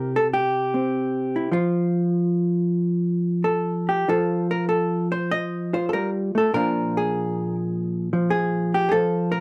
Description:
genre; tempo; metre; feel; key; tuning
solo jazz; 99 BPM; 4/4; swing 69% on 8ths, rubato; unclear; A4 = 439 Hz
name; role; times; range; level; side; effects
hollow-body jazz guitar; solo; 0.0-9.4 s; Bb2 to Eb5; -23 LUFS; equal; none
room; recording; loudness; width
light reverb; dry, close 1970s-style studio recording; -23 LUFS; mono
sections
0.0-4.1 A section; 4.1-9.4 A section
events
none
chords
0.0 C; 1.5 N.C.; 4.1 F7; 6.5 Bb7

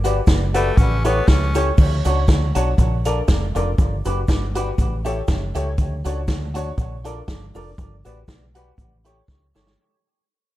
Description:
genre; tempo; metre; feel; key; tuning
ska; 120 BPM; 4/4; swing 55% on 8ths; D major; A4 = 440 Hz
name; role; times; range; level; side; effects
clean electric guitar; accompaniment; 0.0-9.7 s; E4 to D5; -29 LUFS; right 4 dB; phaser, analog delay
warm upright piano; stabs; 0.0-9.7 s; D4 to C#5; -27 LUFS; left 4 dB; analog delay
deep dub fingered electric bass; bass; 0.0-9.8 s; F1 to D2; -22 LUFS; equal; none
vintage drum kit; drums; 0.0-9.8 s; crash cymbal, hi-hat, kick drum, snare drum; -19 LUFS; equal; none
cabasa; percussion; 0.0-9.7 s; none; -45 LUFS; right 5 dB; none
raspy tenor saxophone; melody; 0.5-1.7 s; A3 to C#4; -26 LUFS; left 2 dB; analog delay
room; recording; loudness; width
small room ambience; none; -17 LUFS; side -15 dB against mid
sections
0.0-1.8 A section; 1.8-9.8 B section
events
fade-out 1.8-9.8; drum fill 9.3-9.8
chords
0.0 Gmaj7; 0.8 A7; 1.8 Dmaj7; 2.8 Bbmaj7; 3.8 Gmaj7; 4.8 A7; 5.8 Dmaj7; 6.8 Bbmaj7; 7.8 Gmaj7; 8.8 A7

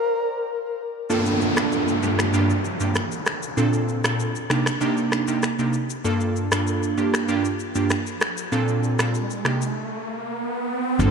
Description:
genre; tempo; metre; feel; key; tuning
afrobeats; 97 BPM; 4/4; straight; unclear; A4 = 440 Hz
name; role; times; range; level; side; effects
breathy flute-like synth lead; melody; 0.0-0.8 s; Bb4; -26 LUFS; left 3 dB; chorus, tremolo, ping-pong delay
glassy digital keys; accompaniment; 1.1-11.1 s; G2 to A4; -22 LUFS; right 2 dB; chorus
electronic shaker, rim click and finger snaps; drums; 1.1-11.1 s; none; -27 LUFS; left 1 dB; vintage 12-bit sampler grit
downlifter and riser; sound effects; 1.1-11.0 s; none; -28 LUFS; equal; none
hollow-body short-scale fingered electric bass; bass; 11.0-11.1 s; G1; -18 LUFS; left 1 dB; none
congas; percussion; 11.0-11.1 s; none; -22 LUFS; left 2 dB; none
room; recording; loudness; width
moderate plate reverb, RT60 3.9 s; dreamy mix soaked in reverb; -21 LUFS; side -6 dB against mid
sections
0.0-1.1 A section; 1.1-11.0 B section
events
break 0.0-1.1, 9.8-11.0; riser 8.2-11.0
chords
0.0 N.C.; 1.1 Gm7; 3.6 Bbmaj7; 4.5 Cm7; 6.0 Gm7; 8.5 Bbmaj7; 9.4 Cm7

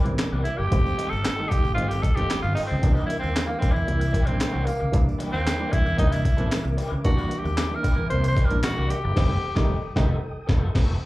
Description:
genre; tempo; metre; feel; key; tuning
funk; 114 BPM; 4/4; straight; C mixolydian; A4 = 441 Hz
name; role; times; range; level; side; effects
raw garage guitar; accompaniment; 0.0-10.9 s; Eb3 to A4; -36 LUFS; left 4 dB; wah, overdrive, slapback echo
mellow tonewheel organ; sustained chords; 0.0-11.1 s; A4 to Eb6; -38 LUFS; equal; slow rotary speaker, chorus vibrato
barky reed electric piano; stabs; 0.0-10.1 s; Eb3 to E4; -30 LUFS; right 1 dB; overdrive, fast tremolo, slapback echo, analog delay
fingered electric bass; bass; 0.1-10.9 s; F1 to E2; -25 LUFS; equal; none
breakbeat sampler-style drum kit; drums; 0.1-10.9 s; crash cymbal, handclaps, hi-hat, kick drum, snare drum; -23 LUFS; equal; none
tambourine; percussion; 0.2-9.0 s; none; -51 LUFS; left 5 dB; none
raspy tenor saxophone; melody; 0.4-10.2 s; Bb3 to C5; -28 LUFS; equal; slapback echo
room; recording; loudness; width
light reverb; live gig heard through the venue's PA, club reverb; -21 LUFS; side -18 dB against mid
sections
0.0-11.1 A section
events
tenor saxophone solo 0.0-11.1; band accent 9.2-11.1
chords
0.0 C9; 0.7 F9; 2.8 C9; 9.2 F9

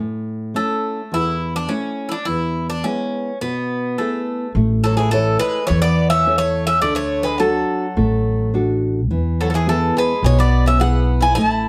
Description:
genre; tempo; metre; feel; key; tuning
greek folk; 106 BPM; 4/4; straight; A major; A4 = 440 Hz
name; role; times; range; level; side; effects
nylon-string guitar; accompaniment; 0.0-11.7 s; E2 to C#5; -24 LUFS; equal; none
Greek bouzouki; melody; 0.6-11.7 s; A3 to A5; -23 LUFS; equal; none
upright bass; bass; 4.5-11.7 s; A1 to E2; -21 LUFS; equal; none
Greek bouzouki; second line; 4.9-11.7 s; E3 to E4; -30 LUFS; equal; none
room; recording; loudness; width
moderate studio reverb, RT60 0.6 s; dark, warm production; -19 LUFS; mono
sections
0.0-4.6 A section; 4.6-11.7 B section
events
none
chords
0.0 A; 2.3 E; 4.6 A; 6.8 D; 9.1 E

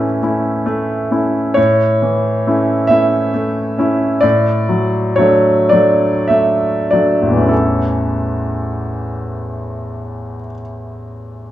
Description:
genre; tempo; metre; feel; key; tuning
classical, romantic nocturne for solo piano; 31-48 BPM (dotted quarters); 12/8; rubato; A major; A4 = 440 Hz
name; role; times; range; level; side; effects
clear grand piano; solo; 0.0-11.5 s; A1 to A5; -13 LUFS; equal; none
room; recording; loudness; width
wet large studio reverb, RT60 0.8 s; heard from further back in the room; -12 LUFS; side -13 dB against mid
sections
0.0-1.6 A section; 1.6-7.5 B section; 7.5-11.5 C section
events
slowing down 0.0-7.5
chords
0.0 A; 4.2 D/A; 7.5 A

